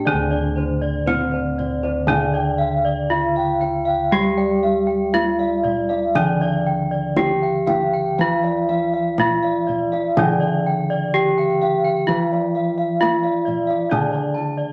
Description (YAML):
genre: Javanese gamelan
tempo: 60 BPM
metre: 4/4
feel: uneven beats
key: D slendro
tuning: A4 = 440 Hz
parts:
  - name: gamelan-type bronze metallophone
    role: melody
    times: 0.0-14.7 s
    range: C4-25c to G4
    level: -24 LUFS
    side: equal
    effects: none
  - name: gamelan-type bronze metallophone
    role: accompaniment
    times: 0.0-14.7 s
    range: D3 to G3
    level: -27 LUFS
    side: equal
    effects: none
  - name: gamelan-type bossed gongs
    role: arpeggios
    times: 0.0-14.6 s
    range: C5-25c to A5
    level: -28 LUFS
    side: equal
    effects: none
  - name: gamelan-type bronze metallophone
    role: arpeggios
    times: 0.0-14.7 s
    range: C5-25c to A5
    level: -27 LUFS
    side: equal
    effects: none
  - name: gamelan-type bossed gongs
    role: bass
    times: 0.0-14.7 s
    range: D2 to G4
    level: -30 LUFS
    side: equal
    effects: none
  - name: kendang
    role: percussion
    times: 0.6-14.5 s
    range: none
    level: -30 LUFS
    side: equal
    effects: none
room: wet studio reverb, RT60 0.7 s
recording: none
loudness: -20 LUFS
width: mono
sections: 0.1-14.7 A section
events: none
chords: none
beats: | 0.06 1.08 2.10 3.12 | 4.13 5.15 6.17 7.18 | 8.20 9.21 10.19 11.15 | 12.10 13.02 13.92